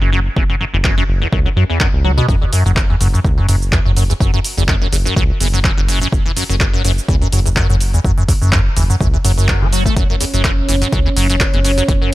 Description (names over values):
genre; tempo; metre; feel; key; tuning
acid house; 125 BPM; 4/4; swing 54% on 16ths; unclear; A4 = 440 Hz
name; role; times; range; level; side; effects
liquid acid bass; riff; 0.0-12.1 s; E2 to A3; -17 LUFS; equal; phaser, analog chorus, sidechain pumping, analog delay
round analog bass; bass; 0.0-12.0 s; F#1 to F#2; -17 LUFS; equal; tube saturation, sidechain pumping
electronic kick drum; drums; 0.4-12.0 s; none; -16 LUFS; equal; overdrive
punchy analog drum machine; drums; 0.8-12.0 s; handclaps, hi-hat, shaker; -21 LUFS; right 1 dB; overdrive
dark analog pad; sustained chords; 10.0-12.1 s; C#4 to C#5; -20 LUFS; right 2 dB; chorus, sidechain pumping
room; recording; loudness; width
little or no reverb; none; -12 LUFS; side -17 dB against mid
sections
0.0-12.1 A section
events
none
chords
0.0 F#5